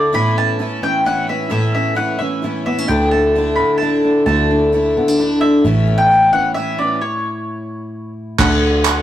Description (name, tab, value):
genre	indie folk with a building arrangement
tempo	131 BPM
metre	3/4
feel	straight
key	D major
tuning	A4 = 440 Hz
part	mandolin	melody	0.0-9.0 s	C#5 to B5	-18 LUFS	left 1 dB	none
part	fingerpicked steel-string acoustic guitar	accompaniment	0.0-8.4 s	D2 to E4	-19 LUFS	equal	none
part	picked twelve-string acoustic guitar	accompaniment	0.0-9.0 s	A2 to F#4	-19 LUFS	left 1 dB	none
part	picked electric bass	bass	2.9-9.0 s	A1 to D2	-18 LUFS	right 1 dB	none
part	loose indie drum kit	drums	8.4-9.0 s	crash cymbal, hi-hat, kick drum	-19 LUFS	equal	none
part	group handclap	percussion	8.4-9.0 s	none	-18 LUFS	right 7 dB	none
room	moderate stone room reverb, RT60 1.3 s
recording	rough rehearsal-room recording, tube saturation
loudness	-13 LUFS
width	side -12 dB against mid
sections	0.0-8.4 A section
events	stop 7.0-8.4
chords	0.1 Aadd9; 2.9 Dsus2; 5.6 Aadd9; 8.4 D